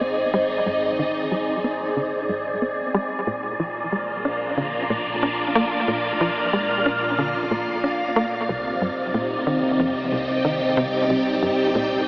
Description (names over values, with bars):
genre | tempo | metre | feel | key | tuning
ambient, sequencer-driven space music | 92 BPM | 4/4 | straight | unclear | A4 = 441 Hz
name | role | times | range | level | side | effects
phased string machine | sustained chords | 0.0-12.1 s | Bb2 to G5 | -22 LUFS | equal | ensemble chorus, phaser
tight sequencer bass | riff | 0.0-12.0 s | C2 to D4 | -26 LUFS | equal | tape echo
fat analog bass | bass | 0.0-12.1 s | Ab1 | -39 LUFS | equal | none
wind-like tuned noise texture | texture | 0.0-12.1 s | D5 | -28 LUFS | equal | built-in reverb
room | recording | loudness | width
wet lush hall reverb, RT60 2.4 s | AM radio sound | -20 LUFS | side -26 dB against mid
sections
0.0-12.1 A section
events
filter sweep on analog synth bass 0.0-12.1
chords
0.0 Ab; 3.3 Bb; 8.5 Cm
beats
0.01 | 0.66 1.31 1.97 2.62 | 3.27 3.92 4.58 5.23 | 5.88 6.53 7.18 7.84 | 8.49 9.14 9.79 10.45 | 11.10 11.75